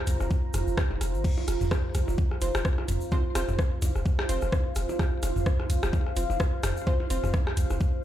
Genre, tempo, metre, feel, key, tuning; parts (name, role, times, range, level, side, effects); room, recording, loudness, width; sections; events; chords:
minimal techno; 128 BPM; 4/4; swing 56% on 16ths; A4 = 439 Hz
deep dark ambient pad; texture; 0.0-8.0 s; F4 to Bb5; -34 LUFS; right 1 dB; chorus, built-in reverb, sidechain pumping
punchy sub bass; bass; 0.1-7.8 s; F1 to C2; -28 LUFS; equal; sidechain pumping
garage drum kit; drums; 0.1-7.7 s; crash cymbal, hi-hat, rim click; -35 LUFS; equal; overdrive
minimal click drum kit; percussion; 0.1-7.8 s; percussion blips, rim click, toms; -32 LUFS; equal; ping-pong delay
tube shaker; percussion; 0.1-7.9 s; -45 LUFS; left 2 dB
electronic kick drum; drums; 0.3-7.9 s; -25 LUFS; equal; overdrive
wavetable chord stab; stabs; 2.4-7.2 s; C4 to C5; -35 LUFS; right 1 dB; ping-pong delay
light reverb; played on a big sound system in a bare room, large studio reverb; -24 LUFS; side -12 dB against mid
0.0-8.0 A section
0.0 F5